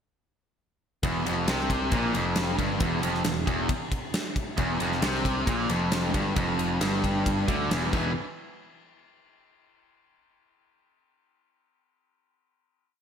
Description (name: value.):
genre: hard rock.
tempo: 135 BPM.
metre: 4/4.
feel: straight.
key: unclear.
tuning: A4 = 439 Hz.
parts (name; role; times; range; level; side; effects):
distorted electric guitar; riff; 1.0-8.1 s; E2 to E3; -29 LUFS; left 8 dB; overdrive.
overdriven electric guitar; riff; 1.0-8.1 s; E2 to E3; -30 LUFS; right 8 dB; spring reverb, slapback echo.
modern bright picked electric bass; bass; 1.0-8.1 s; E1 to D2; -32 LUFS; equal; none.
gated 80s drum kit; drums; 1.0-8.0 s; crash cymbal, kick drum, ride cymbal, snare drum; -30 LUFS; equal; none.
room: moderate lush hall reverb, RT60 1.7 s, studio reverb.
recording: big arena sound.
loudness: -24 LUFS.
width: side -7 dB against mid.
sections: 1.0-8.1 riff; 8.1-9.9 final hit.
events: drum fill 7.9.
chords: 1.0 Em; 7.9 E5; 8.1 N.C..